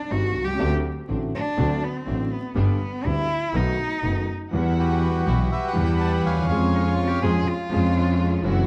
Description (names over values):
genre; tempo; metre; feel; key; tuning
tango; 122 BPM; 4/4; rubato; unclear; A4 = 442 Hz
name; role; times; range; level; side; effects
warm cello; second line; 0.0-8.4 s; B3 to G#4; -30 LUFS; equal; none
warm concert grand piano; accompaniment; 0.1-8.7 s; F#1 to F#5; -28 LUFS; equal; none
rich studio string section; stabs; 0.1-8.7 s; F#3 to F#5; -35 LUFS; equal; none
warm double bass; bass; 0.1-8.7 s; F#1 to E#2; -27 LUFS; equal; none
bandoneon; melody; 4.8-7.2 s; F#4 to A5; -29 LUFS; equal; none
room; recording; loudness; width
moderate recital hall reverb, RT60 1.3 s; dark, warm production, vinyl crackle; -23 LUFS; mono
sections
0.0-4.5 A section; 4.5-8.7 B section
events
cello solo 0.0-4.5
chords
0.0 Cm; 0.6 D7; 2.6 G; 3.5 B7; 4.5 Emadd9; 6.5 C#/E#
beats
0.10 | 0.60 1.09 1.58 2.07 | 2.56 3.05 3.54 4.04 | 4.53 5.02 5.51 6.00 | 6.49 6.98 7.47 7.96 | 8.45